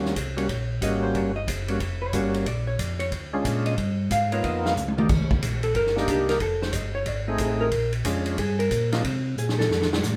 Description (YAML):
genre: soul jazz organ trio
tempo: 183 BPM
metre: 4/4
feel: swing 64% on 8ths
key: unclear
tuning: A4 = 440 Hz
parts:
  - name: percussive tonewheel organ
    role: melody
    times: 0.0-9.0 s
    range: G3 to G#4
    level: -29 LUFS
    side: equal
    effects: slow rotary speaker, overdrive, chorus vibrato
  - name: mellow tonewheel organ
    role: bass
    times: 0.0-10.2 s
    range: F1 to C3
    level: -30 LUFS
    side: equal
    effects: slow rotary speaker
  - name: swinging big-band drum kit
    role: drums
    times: 0.1-10.1 s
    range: crash cymbal, hi-hat, kick drum, ride cymbal, snare drum, toms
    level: -31 LUFS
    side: equal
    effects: none
  - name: vintage hollow-body jazz guitar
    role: accompaniment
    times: 0.4-9.9 s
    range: D4 to F5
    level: -30 LUFS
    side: equal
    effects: none
room: wet studio reverb, RT60 0.5 s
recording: heard from further back in the room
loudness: -25 LUFS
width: mono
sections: 0.0-10.2 A section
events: hollow-body jazz guitar solo 0.0-10.2; drum fill 4.8-5.1, 9.4-10.0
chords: 0.0 Eb7#9; 2.5 Bb7#9; 3.8 G7alt; 5.1 Cm7; 6.4 F7#9; 7.7 Bb7#9; 8.4 Gm7; 9.0 Abadd9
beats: 0.17 0.49 0.82 | 1.15 1.48 1.81 2.13 | 2.46 2.79 3.12 3.45 | 3.77 4.10 4.43 4.76 | 5.09 5.42 5.75 6.08 | 6.40 6.73 7.06 7.39 | 7.72 8.05 8.38 8.71 | 9.04 9.37 9.70 10.03